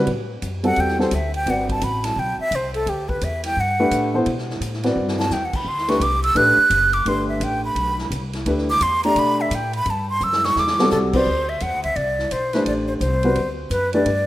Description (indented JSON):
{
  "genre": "modal jazz",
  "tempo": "172 BPM",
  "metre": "4/4",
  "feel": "swing 64% on 8ths",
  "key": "D mixolydian",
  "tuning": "A4 = 440 Hz",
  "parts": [
    { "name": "dark baby grand piano", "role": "accompaniment", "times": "0.0-14.1 s", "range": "G3 to D5", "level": "-22 LUFS", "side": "equal", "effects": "none" },
    { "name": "upright bass", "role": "bass", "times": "0.0-14.3 s", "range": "F#1 to B2", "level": "-26 LUFS", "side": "equal", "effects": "none" },
    { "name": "swinging big-band drum kit", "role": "drums", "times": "0.1-14.2 s", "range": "crash cymbal, hi-hat, kick drum, ride cymbal, snare drum", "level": "-31 LUFS", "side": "equal", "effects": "none" },
    { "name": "breathy mellow silver concert flute", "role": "melody", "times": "0.7-14.3 s", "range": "G4 to F#6", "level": "-20 LUFS", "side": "right 1 dB", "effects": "none" }
  ],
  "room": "moderate lush hall reverb, RT60 2.0 s",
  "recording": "rough home demo mix",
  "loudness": "-18 LUFS",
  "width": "side -15 dB against mid",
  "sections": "0.1-11.3 A section; 11.3-14.3 B section",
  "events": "flute solo 0.1-11.3; drum fill 5.0-5.3, 10.2-10.9",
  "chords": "0.1 D9sus4; 2.9 Em/D; 5.7 D7sus4; 8.5 Em/D; 11.3 D7sus4"
}